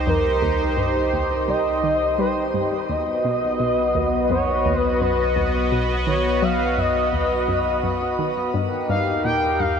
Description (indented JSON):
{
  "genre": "ambient, sequencer-driven space music",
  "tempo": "85 BPM",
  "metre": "4/4",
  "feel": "straight",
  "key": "unclear",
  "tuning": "A4 = 439 Hz",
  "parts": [
    { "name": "sweeping resonant pad", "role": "sustained chords", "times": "0.0-9.8 s", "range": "B3 to D#5", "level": "-23 LUFS", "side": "equal", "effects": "chorus" },
    { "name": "round analog bass", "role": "bass", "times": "0.0-9.8 s", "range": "B1 to Eb2", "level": "-29 LUFS", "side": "equal", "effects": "none" },
    { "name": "expressive portamento lead", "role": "melody", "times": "0.1-9.8 s", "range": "Bb4 to G5", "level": "-23 LUFS", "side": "equal", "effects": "wide subtle chorus, cassette tape, ping-pong delay" },
    { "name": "hollow square pluck", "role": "riff", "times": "0.1-9.7 s", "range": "C2 to G3", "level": "-27 LUFS", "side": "equal", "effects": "chorus, phaser, ping-pong delay" }
  ],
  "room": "wet shimmer reverb, RT60 6.7 s",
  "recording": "none",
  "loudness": "-19 LUFS",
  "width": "side -7 dB against mid",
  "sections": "0.0-9.8 A section",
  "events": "none",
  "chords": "0.0 Cm; 2.9 B; 8.5 Eb"
}